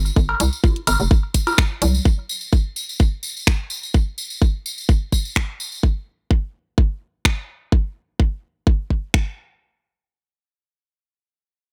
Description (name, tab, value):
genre	minimal techno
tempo	127 BPM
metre	4/4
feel	straight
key	unclear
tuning	A4 = 442 Hz
part	hollow knocking FM bass	bass	0.0-2.0 s	F1 to C2	-21 LUFS	equal	sidechain pumping
part	tambourine	percussion	0.1-5.8 s	none	-31 LUFS	equal	none
part	electronic kick drum	drums	0.2-9.2 s	none	-19 LUFS	equal	none
part	cowbell and congas	percussion	0.3-1.9 s	none	-25 LUFS	equal	none
part	garage drum kit	drums	0.4-9.2 s	finger snaps, hi-hat	-22 LUFS	equal	none
room	digital ambience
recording	none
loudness	-21 LUFS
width	mono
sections	0.0-9.6 A section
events	none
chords	none